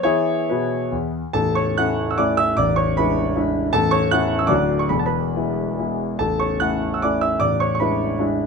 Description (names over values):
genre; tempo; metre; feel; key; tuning
classical, romantic triple-time dance for piano with dotted rhythms; 130-168 BPM; 3/4; rubato; A major; A4 = 436 Hz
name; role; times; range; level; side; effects
warm concert grand piano; solo; 0.0-8.5 s; A0 to F#6; -18 LUFS; equal; none
room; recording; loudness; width
light reverb; dark, warm production; -18 LUFS; side -5 dB against mid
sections
0.0-1.3 A section; 1.3-8.5 B section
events
none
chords
0.0 E; 1.3 A; 2.6 E7/A; 3.7 A; 4.5 D; 4.9 E; 6.2 A; 7.4 E7/A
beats
| 0.05 0.49 0.93 | 1.34 1.77 2.19 | 2.58 2.97 3.37 | 3.74 4.12 4.50 | 4.91 5.36 5.79 | 6.20 6.62 7.03 | 7.41 7.80 8.20